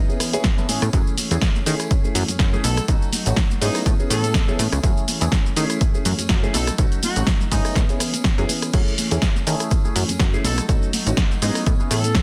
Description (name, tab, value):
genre	filtered disco house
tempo	123 BPM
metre	4/4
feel	swing 55% on 16ths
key	F# dorian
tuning	A4 = 440 Hz
part	warm concert grand piano	accompaniment	0.0-11.9 s	A3 to A4	-31 LUFS	equal	phaser, sidechain pumping
part	mellow electric guitar	riff	0.0-12.2 s	E3 to G#4	-33 LUFS	equal	sidechain pumping
part	punchy analog drum machine	drums	0.1-12.2 s	crash cymbal, hi-hat, rim click, shaker, snare drum	-26 LUFS	equal	sidechain pumping on hats, sidechain pumping on perc, sidechain pumping on cymbals
part	tambourine and congas	percussion	0.1-12.2 s	none	-36 LUFS	equal	none
part	electronic kick drum	drums	0.4-12.2 s	none	-22 LUFS	equal	none
part	plucky analog bass	bass	0.7-12.2 s	A1 to D#3	-25 LUFS	equal	sidechain pumping
part	bright horn section	melody	2.6-12.2 s	D#4 to A4	-32 LUFS	equal	sidechain pumping, tape echo
room	digital ambience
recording	dense, heavily limited modern master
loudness	-20 LUFS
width	mono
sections	0.0-12.2 A section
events	none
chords	0.0 Amaj9; 0.9 F#m9; 2.6 B7; 3.9 Amaj9; 4.8 F#m9; 6.5 B7; 7.8 Amaj9; 8.7 F#m9; 10.4 B7; 11.7 Amaj9